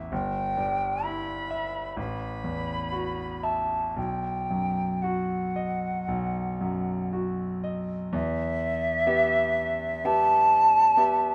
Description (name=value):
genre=classical, romantic duo for flute and grand piano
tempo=56-66 BPM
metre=4/4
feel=rubato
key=E minor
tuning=A4 = 437 Hz
part: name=clear concert grand piano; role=accompaniment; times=0.0-11.3 s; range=G1 to E5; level=-32 LUFS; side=equal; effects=none
part: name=mellow hollow silver concert flute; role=melody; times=0.1-11.3 s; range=E5 to B5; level=-27 LUFS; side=equal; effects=none
room=moderate stone room reverb, RT60 1.4 s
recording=none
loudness=-27 LUFS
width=mono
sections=0.0-8.1 A section; 8.1-11.3 B section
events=none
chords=0.1 Em/G; 2.0 Asus2; 4.0 B; 8.1 Em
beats=| 0.11 1.03 1.97 2.93 | 3.96 5.03 6.07 7.12 | 8.13 9.06 10.04 10.97